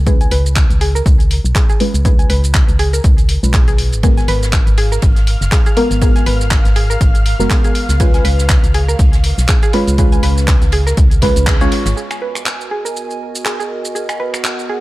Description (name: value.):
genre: deep house.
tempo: 121 BPM.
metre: 4/4.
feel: swing 56% on 16ths.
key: G# dorian.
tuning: A4 = 440 Hz.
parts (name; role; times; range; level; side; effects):
deep mellow chord stab; stabs; 0.0-11.9 s; G#3 to C#5; -19 LUFS; equal; wide subtle chorus, cassette tape, sidechain pumping, tape echo.
organ-like FM bass; bass; 0.0-11.9 s; F#1 to C#2; -15 LUFS; equal; sidechain pumping.
mallet-like synth pluck; arpeggios; 0.1-14.8 s; G#4 to G#5; -24 LUFS; right 2 dB; chorus, sidechain pumping, analog delay.
deep house drum kit; drums; 0.1-14.7 s; finger snaps, handclaps, hi-hat, shaker; -22 LUFS; equal; overdrive.
electronic kick drum; drums; 0.1-11.6 s; none; -12 LUFS; equal; none.
natural country drum kit; drums; 4.0-12.0 s; ride cymbal, snare drum; -32 LUFS; right 2 dB; sidechain pumping on cymbals, high-pass filter on cymbals, high-pass filter on snare, high-pass filter on room.
soft string machine; texture; 4.8-12.0 s; E#5 to E#6; -28 LUFS; equal; ensemble chorus, sidechain pumping.
hollow soft pad; sustained chords; 12.2-14.8 s; B3 to G#5; -24 LUFS; right 2 dB; chorus, sidechain pumping.
room: digital ambience.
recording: none.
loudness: -11 LUFS.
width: side -18 dB against mid.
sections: 0.0-12.0 A section; 12.0-14.8 B section.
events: filter sweep on synth stab 0.0-12.0; filter sweep on synth arpeggio sound 0.0-12.0, 12.0-14.8; band accent 11.5.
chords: 0.1 C#7; 4.0 G#m9; 8.0 C#7; 12.0 G#m9.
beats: | 0.07 0.56 1.06 1.55 | 2.05 2.55 3.04 3.54 | 4.03 4.53 5.03 5.52 | 6.02 6.51 7.01 7.50 | 8.00 8.50 8.99 9.49 | 9.98 10.48 10.98 11.47 | 11.97 12.46 12.96 13.46 | 13.95 14.45.